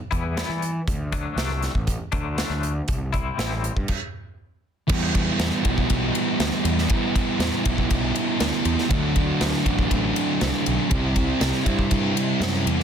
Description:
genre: quiet-loud alternative rock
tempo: 120 BPM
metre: 4/4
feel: straight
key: E minor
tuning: A4 = 441 Hz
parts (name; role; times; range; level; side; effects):
- twangy electric guitar; arpeggios; 0.1-3.7 s; C3 to E4; -29 LUFS; left 8 dB; tremolo, slapback echo, plate reverb
- fuzz picked electric bass; bass; 0.1-12.8 s; A1 to E3; -27 LUFS; equal; overdrive
- big rock drum kit; drums; 0.1-12.8 s; crash cymbal, hi-hat, kick drum, ride cymbal, snare drum; -25 LUFS; equal; none
- thick fuzz guitar; riff; 4.9-12.8 s; C3 to E4; -22 LUFS; right 2 dB; distortion
room: light reverb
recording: dense, heavily limited modern master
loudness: -21 LUFS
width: side -8 dB against mid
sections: 0.0-4.9 A section; 4.9-12.8 B section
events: stop 3.9-4.9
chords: 0.0 Em; 0.9 D; 2.9 C; 3.9 N.C.; 4.9 Em; 8.9 D; 10.9 C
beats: 0.36 | 0.87 1.37 1.88 2.38 | 2.88 3.38 3.89 4.39 | 4.89 5.39 5.89 6.39 | 6.90 7.40 7.90 8.40 | 8.90 9.40 9.90 10.40 | 10.90 11.41 11.91 12.41

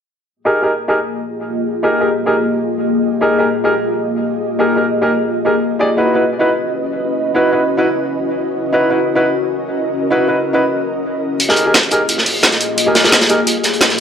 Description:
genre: liquid drum and bass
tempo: 174 BPM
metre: 4/4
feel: straight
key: unclear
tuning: A4 = 440 Hz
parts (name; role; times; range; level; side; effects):
- ethereal airy pad; sustained chords; 0.8-14.0 s; Bb3 to Eb5; -18 LUFS; left 1 dB; ensemble chorus, built-in reverb
- clear grand piano; accompaniment; 0.5-13.4 s; Eb4 to D5; -16 LUFS; equal; low-pass filter, tape echo
- crunchy breakbeat drum kit; drums; 11.4-14.0 s; hi-hat, snare drum; -14 LUFS; equal; high-pass filter on hats, high-pass filter on snare, high-pass filter on room
- drum and bass drum kit; drums; 11.4-14.0 s; hi-hat, snare drum; -14 LUFS; equal; overdrive, low-pass filter on hats, low-pass filter on snare
room: moderate digital room reverb, RT60 1.1 s, studio reverb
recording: none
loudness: -13 LUFS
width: side -7 dB against mid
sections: 0.4-14.0 A section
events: filter sweep on ambient pad 0.4-14.0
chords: 0.4 Fm11; 5.9 Dbm11; 11.4 Fm11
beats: | 0.37 0.71 1.06 1.40 | 1.75 2.09 2.44 2.78 | 3.12 3.47 3.81 4.16 | 4.50 4.85 5.19 5.54 | 5.88 6.23 6.57 6.92 | 7.26 7.61 7.95 8.30 | 8.64 8.99 9.33 9.68 | 10.02 10.37 10.71 11.06 | 11.40 11.75 12.09 12.44 | 12.78 13.12 13.47 13.81

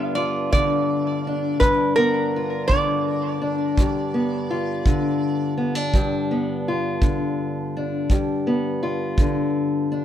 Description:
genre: acoustic country blues, solo or duo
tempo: 56 BPM (dotted quarters)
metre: 12/8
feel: straight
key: G mixolydian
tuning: A4 = 436 Hz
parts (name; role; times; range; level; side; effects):
- metal-body resonator slide guitar; melody; 0.0-5.5 s; Bb4 to F5; -23 LUFS; right 2 dB; tape echo
- fingerpicked steel-string acoustic guitar; accompaniment; 0.0-10.0 s; G2 to F4; -22 LUFS; left 2 dB; none
- kick drum; drums; 0.5-9.3 s; none; -20 LUFS; equal; none
room: light reverb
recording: close, detailed microphones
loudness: -20 LUFS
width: side -10 dB against mid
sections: 0.0-10.0 A section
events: none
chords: 0.0 G7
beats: 0.53 1.61 2.70 | 3.78 4.86 5.94 7.02 | 8.10 9.18

